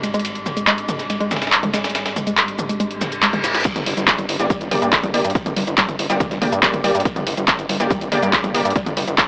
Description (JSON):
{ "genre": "driving peak-time techno", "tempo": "141 BPM", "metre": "4/4", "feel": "straight", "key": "G phrygian", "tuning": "A4 = 440 Hz", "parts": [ { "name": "warbly dusty pluck", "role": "riff", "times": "0.0-9.0 s", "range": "G3 to Ab3", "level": "-26 LUFS", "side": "equal", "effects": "chorus, sidechain pumping, analog delay" }, { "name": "gritty driven synth bass", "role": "bass", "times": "0.0-9.2 s", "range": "F1 to G2", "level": "-26 LUFS", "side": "equal", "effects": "sidechain pumping" }, { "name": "metallic inharmonic drone", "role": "drone", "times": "0.0-3.7 s", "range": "G2 to G3", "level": "-32 LUFS", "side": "equal", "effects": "chorus, built-in reverb, sidechain pumping" }, { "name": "breakbeat sampler-style drum kit", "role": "drums", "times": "0.0-9.3 s", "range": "ride cymbal, snare drum", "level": "-27 LUFS", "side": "equal", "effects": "none" }, { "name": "techno drum kit", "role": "drums", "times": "0.0-9.3 s", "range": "crash cymbal, handclaps, hi-hat, shaker, toms", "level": "-20 LUFS", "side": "equal", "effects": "none" }, { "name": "reverse cymbal", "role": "sound effects", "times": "3.0-3.6 s", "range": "none", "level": "-27 LUFS", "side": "left 1 dB", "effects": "none" }, { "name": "electronic kick drum", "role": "drums", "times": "3.6-9.3 s", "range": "none", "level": "-22 LUFS", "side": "equal", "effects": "none" }, { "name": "rave stab", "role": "stabs", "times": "4.4-8.7 s", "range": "Bb3 to D5", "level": "-22 LUFS", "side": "equal", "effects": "chorus, built-in reverb, sidechain pumping, analog delay" } ], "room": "light reverb", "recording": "dry, gritty hardware recording, transformer saturation, cassette tape, AM radio sound", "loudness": "-16 LUFS", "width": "side -29 dB against mid", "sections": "0.0-3.6 A section; 3.6-9.3 B section", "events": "reverse cymbal 3.0-3.6; drop 3.6-9.3", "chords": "0.0 N.C.; 3.6 Gm" }